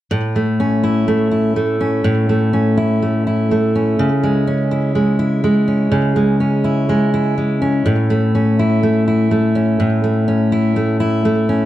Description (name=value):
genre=pop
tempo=62 BPM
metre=4/4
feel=straight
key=unclear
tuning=A4 = 440 Hz
part: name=fingerpicked steel-string acoustic guitar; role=solo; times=0.1-11.7 s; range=A2 to E4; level=-14 LUFS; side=equal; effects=slapback echo
room=light reverb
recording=dry, close 1970s-style studio recording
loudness=-14 LUFS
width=side -13 dB against mid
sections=0.1-11.7 A section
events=none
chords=0.1 A; 4.0 C#m; 7.9 A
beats=| 0.11 1.08 2.05 3.02 | 3.98 4.95 5.92 6.89 | 7.86 8.82 9.79 10.76